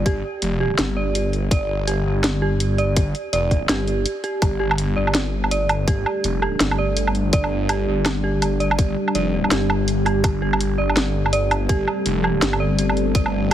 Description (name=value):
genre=half-time drum and bass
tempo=165 BPM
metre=4/4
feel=swing 59% on 16ths, half-time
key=unclear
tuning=A4 = 440 Hz
part: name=dark detuned synth bell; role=arpeggios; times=0.0-13.5 s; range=G4 to G5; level=-25 LUFS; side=right 3 dB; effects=chorus, tremolo, low-pass filter, dub echo
part: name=phased detuned saw bass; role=bass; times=0.0-13.5 s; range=F1 to G1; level=-22 LUFS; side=left 1 dB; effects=phaser
part: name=drum and bass drum kit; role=drums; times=0.1-13.5 s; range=hi-hat, snare drum, woodblock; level=-22 LUFS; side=right 1 dB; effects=studio reverb
part: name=electronic kick drum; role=drums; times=0.1-13.2 s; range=none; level=-19 LUFS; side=left 1 dB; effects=studio reverb
part: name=deep dark ambient pad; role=sustained chords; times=5.5-13.5 s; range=G3 to A4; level=-26 LUFS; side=left 1 dB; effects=chorus, built-in reverb, sidechain pumping
room=light reverb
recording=heavily compressed radio sound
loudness=-18 LUFS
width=side -11 dB against mid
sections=0.0-13.5 A section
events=break 4.1-4.4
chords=0.0 Gsus2